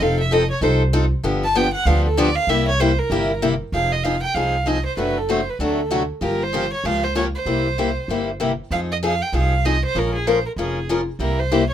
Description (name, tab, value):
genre	acoustic string swing (jazz manouche)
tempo	193 BPM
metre	4/4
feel	swing 60% on 8ths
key	F minor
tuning	A4 = 440 Hz
part	rich violin	melody	0.0-11.7 s	Ab4 to A5	-23 LUFS	right 3 dB	none
part	picked steel-string acoustic guitar	accompaniment	0.0-11.6 s	C3 to Bb4	-21 LUFS	left 3 dB	none
part	upright bass	bass	0.0-11.7 s	F1 to F2	-23 LUFS	right 1 dB	none
room	light reverb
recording	minimal, uncompressed stereo recording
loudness	-18 LUFS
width	side -10 dB against mid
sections	0.0-3.7 A section; 3.7-11.7 B section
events	violin solo 0.0-3.7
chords	0.0 F7; 1.2 G7; 2.5 C7; 3.7 Fm7; 5.0 D7/F#; 6.2 Gm7b5; 7.5 C7; 8.7 Fm7; 10.0 Bbm7; 11.2 C7